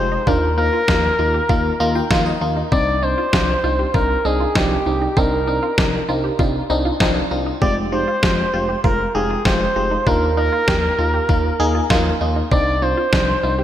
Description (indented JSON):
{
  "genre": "synth-pop",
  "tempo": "98 BPM",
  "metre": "4/4",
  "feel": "straight",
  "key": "unclear",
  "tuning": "A4 = 440 Hz",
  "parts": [
    { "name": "expressive synth lead", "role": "melody", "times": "0.0-13.6 s", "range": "G4 to D5", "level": "-20 LUFS", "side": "equal", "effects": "chorus" },
    { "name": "FM electric piano", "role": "accompaniment", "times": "0.0-13.6 s", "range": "Ab3 to Bb5", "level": "-22 LUFS", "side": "left 2 dB", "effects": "chorus" },
    { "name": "wide unison pluck", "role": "arpeggios", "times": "0.0-13.6 s", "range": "C4 to G4", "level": "-27 LUFS", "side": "right 2 dB", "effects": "wide subtle chorus, digital delay" },
    { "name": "smooth synth bass", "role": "bass", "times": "0.0-13.6 s", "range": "F1 to Eb2", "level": "-23 LUFS", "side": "equal", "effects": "none" },
    { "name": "detuned 8-bit digital drum machine", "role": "drums", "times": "0.3-13.3 s", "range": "kick drum, snare drum", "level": "-20 LUFS", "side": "equal", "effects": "gated reverb" }
  ],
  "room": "moderate lush hall reverb, RT60 2.7 s",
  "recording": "bright 1980s-style digital production",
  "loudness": "-15 LUFS",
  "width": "side -11 dB against mid",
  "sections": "0.0-13.6 A section",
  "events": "FM electric piano fill 1.5-2.7",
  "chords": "0.3 Ebsus2; 2.7 Cmadd9; 7.6 Fmadd9; 10.1 Ebsus2; 12.5 Cmadd9"
}